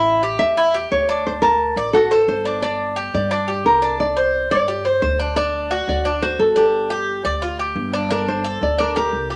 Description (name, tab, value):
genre	latin, Cuban son and guajira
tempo	175 BPM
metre	4/4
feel	straight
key	G minor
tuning	A4 = 441 Hz
part	nylon-string guitar	melody	0.0-9.3 s	G4 to E5	-21 LUFS	equal	none
part	Cuban tres	arpeggios	0.0-9.4 s	D4 to A5	-23 LUFS	equal	none
part	upright bass	bass	0.0-9.4 s	G1 to G2	-31 LUFS	equal	none
room	moderate studio reverb, RT60 0.6 s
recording	lossy compression artefacts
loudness	-19 LUFS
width	mono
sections	0.0-8.1 A section; 8.1-9.4 B section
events	none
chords	0.0 A7; 1.3 D; 2.6 Gm; 4.0 Csus2; 5.4 D; 6.7 G5; 8.1 Gmadd9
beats	0.23 0.57 0.91 | 1.26 1.60 1.94 2.28 | 2.63 2.97 3.31 3.65 | 4.00 4.34 4.68 5.02 | 5.37 5.71 6.05 6.39 | 6.74 7.08 7.42 7.76 | 8.10 8.45 8.79 9.13